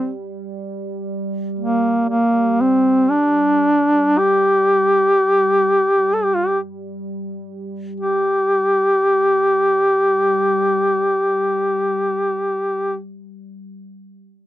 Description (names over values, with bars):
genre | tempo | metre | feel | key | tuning
caucasian folk, Caucasian lament | free time | none | none | G minor | A4 = 438 Hz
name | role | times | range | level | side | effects
warm duduk | melody | 0.0-13.0 s | Bb3 to A4 | -15 LUFS | equal | none
deep dark ambient pad | drone | 0.0-12.9 s | G3 | -28 LUFS | right 1 dB | chorus, built-in reverb
room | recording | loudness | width
light reverb | dry, close 1970s-style studio recording | -15 LUFS | side -14 dB against mid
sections
0.0-8.0 A section; 8.0-12.3 B section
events
slowing down 1.1-8.0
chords
none